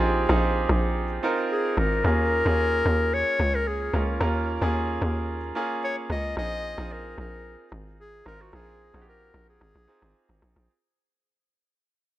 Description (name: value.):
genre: amapiano.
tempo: 111 BPM.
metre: 4/4.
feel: straight.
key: unclear.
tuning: A4 = 440 Hz.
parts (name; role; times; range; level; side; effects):
clear concert grand piano; accompaniment; 0.0-10.7 s; Bb3 to Bb4; -28 LUFS; right 2 dB; none.
tight log drum bass; bass; 0.0-10.7 s; Ab1 to Eb2; -26 LUFS; equal; none.
warm clarinet; melody; 1.5-10.4 s; Gb4 to Eb5; -27 LUFS; left 2 dB; tape echo.
room: small room ambience.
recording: dry, gritty hardware recording.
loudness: -22 LUFS.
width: side -15 dB against mid.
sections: 0.0-10.7 A section.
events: fade-out 0.0-10.7.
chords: 0.0 Bb9sus4; 2.0 Eb9sus4; 6.4 Bb9sus4.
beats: 0.42 0.96 1.50 | 2.04 2.58 3.12 3.66 | 4.21 4.75 5.29 5.83 | 6.37 6.91 7.45 7.99 | 8.53 9.07 9.61 10.15.